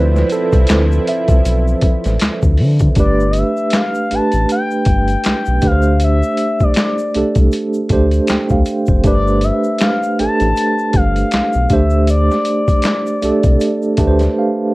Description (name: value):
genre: R&B, neo-soul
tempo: 79 BPM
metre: 4/4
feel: swing 57% on 16ths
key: D dorian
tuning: A4 = 440 Hz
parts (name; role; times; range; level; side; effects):
- tine electric piano; accompaniment; 0.0-14.7 s; F3 to A5; -17 LUFS; right 2 dB; medium tremolo
- lush unison pad; sustained chords; 0.0-2.9 s; F3 to E4; -24 LUFS; left 1 dB; chorus
- round analog bass; bass; 0.0-14.3 s; F1 to D3; -15 LUFS; equal; none
- boom bap sampler-style drum kit; drums; 0.2-14.3 s; handclaps, hi-hat, kick drum, snare drum; -16 LUFS; equal; overdrive
- egg shaker and finger snaps; percussion; 0.2-14.4 s; none; -32 LUFS; left 4 dB; none
- expressive synth lead; melody; 3.0-14.3 s; D5 to A5; -19 LUFS; left 2 dB; chorus, slapback echo
room: light reverb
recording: worn, warbling old tape, cassette tape, warbly pitch drift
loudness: -12 LUFS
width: side -20 dB against mid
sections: 0.0-3.0 A section; 3.0-14.7 B section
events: tine electric piano solo 0.0-3.0; tine electric piano fill 13.6-14.7; break 14.4-14.7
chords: 0.0 Dm9; 3.0 Gadd9; 5.6 Dm7; 9.0 G9; 11.7 D5